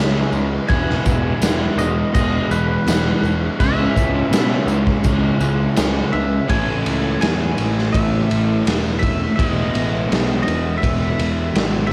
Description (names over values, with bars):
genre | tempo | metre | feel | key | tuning
rock, shoegaze and dream pop | 83 BPM | 4/4 | straight | E major | A4 = 440 Hz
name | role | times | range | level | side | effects
twangy electric guitar | melody | 0.0-11.9 s | B4 to G#5 | -29 LUFS | equal | cassette tape, plate reverb, analog delay
picked twelve-string acoustic guitar | arpeggios | 0.0-11.9 s | E3 to G#4 | -37 LUFS | equal | none
biting overdriven guitar | riff | 0.0-6.5 s | E2 to C#4 | -32 LUFS | equal | none
overdriven electric guitar | riff | 0.0-11.9 s | A2 to E4 | -25 LUFS | equal | reverse reverb, cassette tape
thick fuzz guitar | riff | 0.0-11.9 s | E2 to C#4 | -29 LUFS | equal | none
fuzz picked electric bass | bass | 0.0-11.9 s | E1 to B2 | -24 LUFS | equal | overdrive, tube saturation
tambourine | percussion | 0.3-5.9 s | none | -38 LUFS | equal | none
raw garage drum kit | drums | 0.7-11.7 s | crash cymbal, kick drum, ride cymbal, snare drum | -23 LUFS | equal | none
room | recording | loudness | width
moderate small room ambience, RT60 0.5 s | home recording on cassette | -18 LUFS | mono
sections
0.0-6.5 A section; 6.5-11.9 B section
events
none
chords
0.0 C#m7; 0.7 E; 3.6 C#m7; 6.5 Amaj7; 9.4 Emaj7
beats
| 0.69 1.42 2.15 2.87 | 3.60 4.32 5.05 5.77 | 6.49 7.22 7.94 8.66 | 9.39 10.11 10.84 11.56